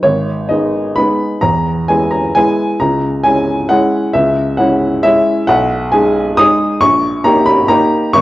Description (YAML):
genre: classical, piano waltz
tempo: 133 BPM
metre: 3/4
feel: uneven beats, rubato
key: G# minor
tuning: A4 = 439 Hz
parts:
  - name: warm upright piano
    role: solo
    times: 0.0-8.2 s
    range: G#1 to D#6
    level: -10 LUFS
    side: equal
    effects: none
room: moderate recital hall reverb, RT60 1.7 s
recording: worn, warbling old tape, cassette tape, warbly pitch drift, nothing above 10.9 kHz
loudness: -11 LUFS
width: side -16 dB against mid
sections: 0.0-8.2 A section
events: none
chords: 0.0 G#m; 1.4 E; 2.8 C#m; 5.5 G#m/B; 6.8 D#7/A#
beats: | 0.04 0.51 0.97 | 1.43 1.89 2.36 | 2.80 3.24 3.69 | 4.14 4.58 5.04 | 5.49 5.93 6.38 | 6.82 7.25 7.70 | 8.14